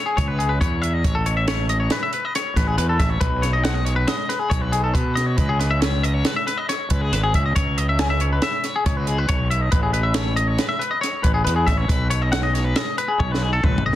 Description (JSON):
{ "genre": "math rock and midwest emo", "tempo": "138 BPM", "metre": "5/4", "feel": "straight", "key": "unclear", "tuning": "A4 = 445 Hz", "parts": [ { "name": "twangy electric guitar", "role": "arpeggios", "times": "0.0-14.0 s", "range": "G#4 to G#5", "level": "-23 LUFS", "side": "left 3 dB", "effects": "spring reverb, plate reverb" }, { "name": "fuzz fingered electric bass", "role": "bass", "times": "0.2-14.0 s", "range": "G#1 to B2", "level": "-22 LUFS", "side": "equal", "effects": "overdrive" }, { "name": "compact cocktail drum kit", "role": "drums", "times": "0.2-14.0 s", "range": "hi-hat, kick drum, snare drum, toms", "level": "-23 LUFS", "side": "equal", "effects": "none" } ], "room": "light reverb", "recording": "dense, heavily limited modern master", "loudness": "-18 LUFS", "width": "side -13 dB against mid", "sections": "0.0-14.0 A section", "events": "drum fill 13.2-14.0", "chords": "0.0 C#m7; 1.0 A; 3.2 B; 5.4 C#m7; 9.7 Amaj7; 11.9 B", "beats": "0.18 0.61 | 1.05 1.48 1.92 2.35 2.78 | 3.22 3.65 4.09 4.52 4.96 | 5.39 5.82 6.26 6.69 7.12 | 7.56 7.99 8.43 8.86 9.29 | 9.73 10.16 10.60 11.03 11.47 | 11.90 12.33 12.77 13.20 13.64" }